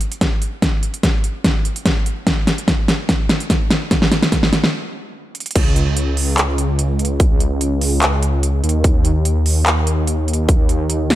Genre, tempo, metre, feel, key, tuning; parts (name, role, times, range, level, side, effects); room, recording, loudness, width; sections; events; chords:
future bass; 146 BPM; 4/4; swing 53% on 16ths, half-time; A4 = 440 Hz
big-room dance drum kit; drums; 0.0-11.2 s; crash cymbal, handclaps, hi-hat, snare drum; -18 LUFS; equal
electronic kick drum; drums; 0.2-10.6 s; -17 LUFS; equal
wide detuned saw bass; bass; 5.6-11.2 s; Db2 to Eb2; -16 LUFS; equal; chorus, sidechain pumping
digital ambience; -15 LUFS; side -14 dB against mid
0.0-5.6 A section; 5.6-11.2 B section
build-up 0.0-5.6; drum fill 0.0-4.7, 5.3; stop 4.7-5.6; drop 5.6-11.2